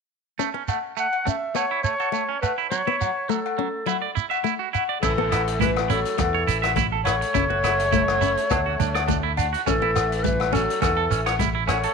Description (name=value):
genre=highlife guitar band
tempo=104 BPM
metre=4/4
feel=straight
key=A major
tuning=A4 = 443 Hz
part: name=picked plugged-in swing-style acoustic guitar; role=accompaniment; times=0.4-11.6 s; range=F#3 to C#4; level=-29 LUFS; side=left 14 dB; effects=none
part: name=twangy electric guitar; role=arpeggios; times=0.4-11.9 s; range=F#3 to E5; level=-27 LUFS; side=right 14 dB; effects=tape echo
part: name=shekere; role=percussion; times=0.4-11.8 s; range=none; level=-28 LUFS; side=right 6 dB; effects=none
part: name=agogo bells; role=percussion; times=0.7-11.8 s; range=none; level=-31 LUFS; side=left 14 dB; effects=none
part: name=mellow clarinet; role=melody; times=1.0-11.9 s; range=A4 to F#5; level=-25 LUFS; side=right 1 dB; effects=none
part: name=growling tenor saxophone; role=second line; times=5.0-11.9 s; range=E3 to A3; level=-32 LUFS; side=left 11 dB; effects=none
part: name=fingered electric bass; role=bass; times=5.0-11.8 s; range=F#1 to E2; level=-28 LUFS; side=right 1 dB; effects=none
part: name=vintage drum kit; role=drums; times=5.0-11.9 s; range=crash cymbal, hi-hat, kick drum, rim click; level=-28 LUFS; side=left 4 dB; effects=none
part: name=congas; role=percussion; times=5.0-11.5 s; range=none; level=-32 LUFS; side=right 16 dB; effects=none
room=light reverb, small room ambience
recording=1960s-style stereo with parts hard left and right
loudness=-20 LUFS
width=side -5 dB against mid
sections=0.4-5.0 A section; 5.0-11.9 B section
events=none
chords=0.4 A; 2.7 F#m; 3.9 Dadd9; 5.0 A; 7.3 F#m7; 8.5 D; 9.7 A